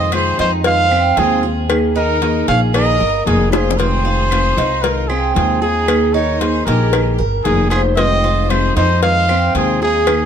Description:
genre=latin, Cuban son and guajira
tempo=115 BPM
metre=4/4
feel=straight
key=F minor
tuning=A4 = 440 Hz
part: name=warm trumpet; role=melody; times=0.0-10.3 s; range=Ab4 to F5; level=-18 LUFS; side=equal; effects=none
part: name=bright studio violin section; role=second line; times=0.0-10.3 s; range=Eb4 to Db5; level=-26 LUFS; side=left 1 dB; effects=none
part: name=nylon-string guitar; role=accompaniment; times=0.0-10.3 s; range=C3 to Ab4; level=-21 LUFS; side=left 2 dB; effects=none
part: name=Cuban tres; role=arpeggios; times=0.0-10.3 s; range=Ab3 to C5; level=-20 LUFS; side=right 3 dB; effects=none
part: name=upright bass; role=bass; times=0.0-10.3 s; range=F1 to F2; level=-18 LUFS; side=equal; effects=none
part: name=claves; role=percussion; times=0.1-10.3 s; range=none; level=-29 LUFS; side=right 4 dB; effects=none
part: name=cowbell and bongos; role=percussion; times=0.1-10.3 s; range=none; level=-22 LUFS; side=left 4 dB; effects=none
room=light reverb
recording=dark, warm production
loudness=-13 LUFS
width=side -8 dB against mid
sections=0.0-10.3 A section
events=drum fill 3.5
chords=0.0 Fm7; 1.7 Ebsus4; 3.8 Fm7; 5.9 Ebsus4; 8.0 Fm7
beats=0.13 0.65 1.17 | 1.70 2.22 2.74 3.27 | 3.79 4.31 4.83 5.36 | 5.88 6.41 6.93 7.45 | 7.98 8.50 9.03 9.55 | 10.08

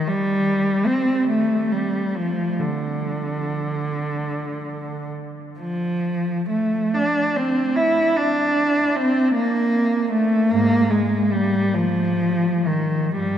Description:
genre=classical, free, expressive piece for unaccompanied cello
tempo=33-53 BPM (dotted quarters)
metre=6/8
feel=rubato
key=unclear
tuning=A4 = 440 Hz
part: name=warm cello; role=solo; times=0.0-13.4 s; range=G2 to E4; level=-19 LUFS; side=equal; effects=none
room=wet cathedral reverb, RT60 6.7 s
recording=none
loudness=-18 LUFS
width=side -10 dB against mid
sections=0.0-13.4 A section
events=none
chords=none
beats=| 0.07 1.28 | 2.59 3.99 | 5.60 6.92 | 8.18 9.37 | 10.52 11.75 | 13.18

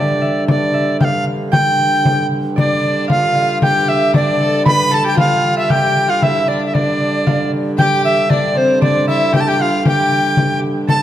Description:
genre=medieval dance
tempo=115 BPM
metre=2/4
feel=straight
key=G mixolydian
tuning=A4 = 441 Hz
part: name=bright reedy tenor recorder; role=melody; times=0.0-11.0 s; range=C5 to B5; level=-16 LUFS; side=equal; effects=none
part: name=concert harp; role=second line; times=0.0-11.0 s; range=C5 to B5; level=-23 LUFS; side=right 4 dB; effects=none
part: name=dark hurdy-gurdy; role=drone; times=0.0-11.0 s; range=G2 to D3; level=-21 LUFS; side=right 1 dB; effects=none
part: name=frame drum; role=percussion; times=0.5-11.0 s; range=none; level=-18 LUFS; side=left 1 dB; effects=none
part: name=clear fiddle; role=second line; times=2.6-11.0 s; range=C4 to B4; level=-22 LUFS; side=left 4 dB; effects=none
room=wet recital hall reverb, RT60 1.7 s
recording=none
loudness=-12 LUFS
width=side -12 dB against mid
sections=0.0-2.6 A section; 2.6-10.9 A section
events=none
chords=none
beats=| 0.48 1.01 | 1.53 2.05 | 2.57 3.10 | 3.62 4.14 | 4.66 5.18 | 5.70 6.22 | 6.74 7.26 | 7.78 8.30 | 8.81 9.33 | 9.85 10.37 | 10.88

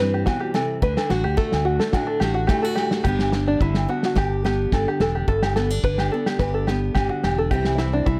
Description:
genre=highlife guitar band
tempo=108 BPM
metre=4/4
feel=straight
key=G major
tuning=A4 = 440 Hz
part: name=picked steel-string acoustic guitar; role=accompaniment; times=0.0-8.2 s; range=G2 to G4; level=-30 LUFS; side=equal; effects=none
part: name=open-back banjo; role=arpeggios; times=0.0-8.2 s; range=D4 to B4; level=-26 LUFS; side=equal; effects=slapback echo
part: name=fingered electric bass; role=bass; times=0.0-8.2 s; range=E1 to G2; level=-27 LUFS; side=equal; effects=none
part: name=warm soul drum kit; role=drums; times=0.3-8.2 s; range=crash cymbal, kick drum, snare drum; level=-26 LUFS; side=equal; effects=none
part: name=agogo bells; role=percussion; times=0.3-7.8 s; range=none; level=-34 LUFS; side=equal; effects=none
room=light reverb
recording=none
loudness=-22 LUFS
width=mono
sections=0.0-3.1 A section; 3.1-8.2 B section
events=drum fill 2.8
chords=0.0 C; 0.8 D; 3.1 G; 7.5 C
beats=0.27 | 0.82 1.38 1.94 2.50 | 3.05 3.61 4.17 4.73 | 5.28 5.84 6.40 6.96 | 7.51 8.07

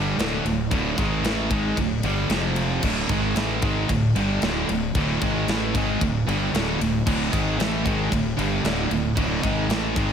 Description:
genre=heavy metal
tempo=114 BPM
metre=4/4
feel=straight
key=D phrygian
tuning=A4 = 442 Hz
part: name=heavy high-gain guitar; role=riff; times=0.0-10.1 s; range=D2 to A3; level=-28 LUFS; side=left 10 dB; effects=distortion
part: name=heavy high-gain guitar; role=riff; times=0.0-10.1 s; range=D2 to A3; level=-26 LUFS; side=right 9 dB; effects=distortion
part: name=thick fuzz guitar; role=riff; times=0.0-10.1 s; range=D2 to A3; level=-28 LUFS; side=equal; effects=distortion
part: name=fuzz fingered electric bass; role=bass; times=0.0-10.1 s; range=D1 to A1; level=-28 LUFS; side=left 1 dB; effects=overdrive
part: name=tight metal drum kit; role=drums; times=0.2-10.1 s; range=crash cymbal, kick drum, ride cymbal, snare drum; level=-28 LUFS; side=left 1 dB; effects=none
room=light reverb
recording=none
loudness=-20 LUFS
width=side -7 dB against mid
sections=0.0-10.1 A section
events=none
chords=0.0 D5; 2.3 F5; 2.8 D5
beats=0.18 | 0.71 1.24 1.77 2.30 | 2.83 3.36 3.89 4.42 | 4.95 5.48 6.00 6.53 | 7.06 7.59 8.12 8.64 | 9.17 9.70

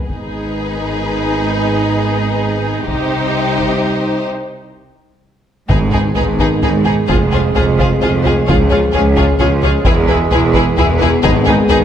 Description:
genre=cinematic, epic orchestral film score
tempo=130 BPM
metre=3/4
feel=straight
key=G# minor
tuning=A4 = 441 Hz
part: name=warm symphonic violin section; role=melody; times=0.1-11.8 s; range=B4 to C#5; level=-24 LUFS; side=left 4 dB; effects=none
part: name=clear symphonic violin section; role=second line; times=0.1-11.8 s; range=G4 to G#4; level=-21 LUFS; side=left 2 dB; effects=none
part: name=rich symphonic viola section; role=accompaniment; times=0.1-11.8 s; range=D#4 to F4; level=-22 LUFS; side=right 1 dB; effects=none
part: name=clear trombone section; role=sustained chords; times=0.1-11.8 s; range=G#2 to G#3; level=-22 LUFS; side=right 6 dB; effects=none
part: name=mellow French horn section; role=sustained chords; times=0.1-11.8 s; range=B3 to Ab4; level=-21 LUFS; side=left 4 dB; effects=none
part: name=clear symphonic cello section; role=bass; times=0.1-11.8 s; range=C#2 to C3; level=-20 LUFS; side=right 2 dB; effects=none
part: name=clear symphonic double bass section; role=bass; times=0.1-11.8 s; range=E1 to C#2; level=-19 LUFS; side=right 2 dB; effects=none
part: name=taiko ensemble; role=drums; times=0.1-11.8 s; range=none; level=-18 LUFS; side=left 1 dB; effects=none
part: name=timpani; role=percussion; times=5.7-6.3, 11.2-11.8 s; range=G#2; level=-20 LUFS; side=left 1 dB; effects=none
room=moderate recital hall reverb, RT60 1.4 s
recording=none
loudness=-12 LUFS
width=side -9 dB against mid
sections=0.1-5.7 A section; 5.7-11.8 B section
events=break 4.3-5.7; drum fill 5.0-5.7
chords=0.1 G#m; 2.9 Cm; 5.7 G#m; 7.1 Fm; 8.5 C#; 9.9 E; 11.2 G#m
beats=| 0.10 0.57 1.03 | 1.50 1.96 2.42 | 2.88 3.34 3.80 | 4.27 4.75 5.22 | 5.69 6.16 6.62 | 7.08 7.55 8.02 | 8.48 8.94 9.40 | 9.86 10.32 10.78 | 11.24 11.70

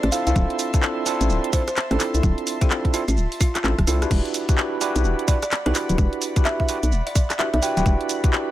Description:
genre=UK garage, two-step garage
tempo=128 BPM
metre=4/4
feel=swing 62% on 16ths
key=E minor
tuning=A4 = 441 Hz
part: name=buzzing kalimba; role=melody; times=0.0-7.8 s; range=F4 to G5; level=-29 LUFS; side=equal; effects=tape echo
part: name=airy breathy pad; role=sustained chords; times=0.0-8.5 s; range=D5 to C6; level=-34 LUFS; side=equal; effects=chorus, sidechain pumping
part: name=hollow knocking FM bass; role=bass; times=0.0-8.0 s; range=D1 to C2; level=-21 LUFS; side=equal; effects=none
part: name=garage drum kit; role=drums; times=0.0-8.4 s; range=crash cymbal, handclaps, hi-hat, rim click, shaker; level=-26 LUFS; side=equal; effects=none
part: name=overdriven tine electric piano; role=stabs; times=0.1-8.5 s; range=C4 to B4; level=-26 LUFS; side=right 1 dB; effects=auto-pan, tape echo
part: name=electronic kick drum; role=drums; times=0.4-8.3 s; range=none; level=-19 LUFS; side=equal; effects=none
room=light reverb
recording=none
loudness=-19 LUFS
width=side -14 dB against mid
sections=0.0-8.5 A section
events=drum fill 3.6-4.1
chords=0.0 Dm9; 4.1 Em9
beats=| 0.36 0.83 1.30 1.76 | 2.23 2.70 3.17 3.64 | 4.11 4.58 5.05 5.51 | 5.98 6.45 6.92 7.39 | 7.86 8.33

